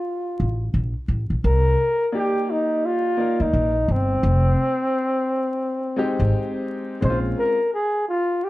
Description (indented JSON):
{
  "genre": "hip hop",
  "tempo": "86 BPM",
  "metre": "4/4",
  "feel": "swing 62% on 16ths",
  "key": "C minor",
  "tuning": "A4 = 441 Hz",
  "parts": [
    { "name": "breathy flugelhorn", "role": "melody", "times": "0.0-8.5 s", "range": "C4 to C5", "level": "-22 LUFS", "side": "equal", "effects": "plate reverb" },
    { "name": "upright bass", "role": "bass", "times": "0.4-7.3 s", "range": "F1 to D2", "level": "-20 LUFS", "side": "equal", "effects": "none" },
    { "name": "warm upright piano", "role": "accompaniment", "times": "2.1-7.6 s", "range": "Ab3 to D5", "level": "-26 LUFS", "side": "left 1 dB", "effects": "none" }
  ],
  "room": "light reverb",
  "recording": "dark, warm production, vinyl crackle",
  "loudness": "-19 LUFS",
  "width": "side -17 dB against mid",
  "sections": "0.0-1.4 A section; 1.4-8.5 A section",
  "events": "none",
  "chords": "0.0 Gm9 (rootless); 1.4 Cm9 (rootless); 4.2 Fm9 (rootless); 7.0 Bbm9"
}